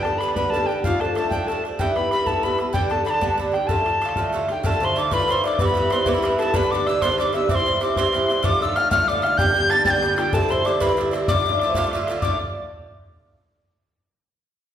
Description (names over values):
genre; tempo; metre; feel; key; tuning
celtic folk, Celtic jig; 127 BPM (dotted quarters); 6/8; straight; D dorian; A4 = 441 Hz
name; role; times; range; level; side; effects
wooden whistle; melody; 0.0-12.4 s; F5 to A6; -22 LUFS; left 1 dB; none
felt-muted upright piano; second line; 0.0-12.4 s; F4 to A5; -26 LUFS; left 2 dB; none
Irish bouzouki; accompaniment; 0.0-12.4 s; G2 to F4; -24 LUFS; right 2 dB; none
bodhran; percussion; 0.1-12.4 s; none; -27 LUFS; equal; none
room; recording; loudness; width
wet recital hall reverb, RT60 1.4 s; recorded in a church or concert hall; -18 LUFS; side -10 dB against mid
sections
0.0-4.6 A section; 4.6-12.2 B section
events
none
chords
0.0 G; 0.8 Dm; 1.8 Em; 2.7 G; 3.7 Dm; 5.6 Em; 6.5 G; 7.5 C; 8.4 Dm; 9.4 G; 10.3 Cadd9; 11.3 Dm